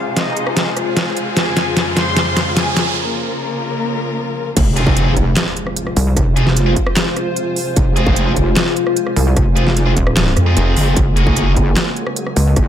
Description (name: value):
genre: heavy wobble dubstep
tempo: 150 BPM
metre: 4/4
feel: half-time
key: F phrygian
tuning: A4 = 440 Hz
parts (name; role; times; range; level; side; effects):
- clear symphonic violin section; melody; 0.0-3.0 s; Eb4 to C6; -23 LUFS; equal; low-pass filter, ping-pong delay
- clear studio string section; sustained chords; 0.0-12.7 s; F2 to Bb4; -24 LUFS; left 2 dB; sidechain pumping, low-pass filter
- riser and impact; sound effects; 0.0-6.2 s; none; -24 LUFS; equal; none
- granular cloud pad; texture; 0.0-12.7 s; F3 to Bb5; -23 LUFS; left 1 dB; built-in reverb, phaser, sidechain pumping
- dubstep drum kit; drums; 0.2-12.6 s; crash cymbal, handclaps, hi-hat, rim click, snare drum; -19 LUFS; equal; none
- wobble bass; bass; 4.6-12.7 s; F1 to F2; -15 LUFS; equal; chorus, overdrive
- electronic kick drum; drums; 4.6-12.6 s; none; -17 LUFS; equal; distortion
- high-gain distorted guitar; stabs; 4.8-11.5 s; Bb3 to Ab4; -23 LUFS; equal; distortion, ping-pong delay
- pulsing pluck wobble bass; bass; 6.0-6.2, 9.2-12.6 s; Eb1 to Db2; -13 LUFS; equal; chorus, overdrive
room: light reverb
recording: none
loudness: -13 LUFS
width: side -10 dB against mid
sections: 0.0-4.6 A section; 4.6-12.7 B section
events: build-up 0.0-4.6; drum fill 0.0-3.0; riser 0.0-3.0; break 3.0-4.6; drop 4.6-12.7; impact 4.6-6.2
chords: 0.0 Fm; 1.4 Db/F; 3.0 Bbm; 4.6 Fm; 11.0 Gbadd9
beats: 0.17 0.57 0.97 | 1.37 1.77 2.17 2.57 | 2.97 3.37 3.77 4.17 | 4.57 4.97 5.37 5.77 | 6.17 6.57 6.97 7.37 | 7.77 8.17 8.57 8.97 | 9.37 9.77 10.17 10.57 | 10.97 11.37 11.77 12.17 | 12.57